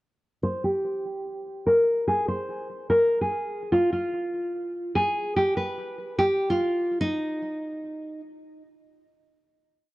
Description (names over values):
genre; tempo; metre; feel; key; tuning
hip hop; 146 BPM; 4/4; half-time; unclear; A4 = 439 Hz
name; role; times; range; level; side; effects
nylon-string guitar; solo; 0.4-8.2 s; Eb4 to C5; -24 LUFS; equal; low-pass filter, analog delay
room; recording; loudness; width
light reverb, studio reverb; dry, gritty hardware recording; -23 LUFS; side -19 dB against mid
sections
0.4-7.0 breakdown; 7.0-9.9 final note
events
filter sweep on nylon-string guitar 0.4-7.0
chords
none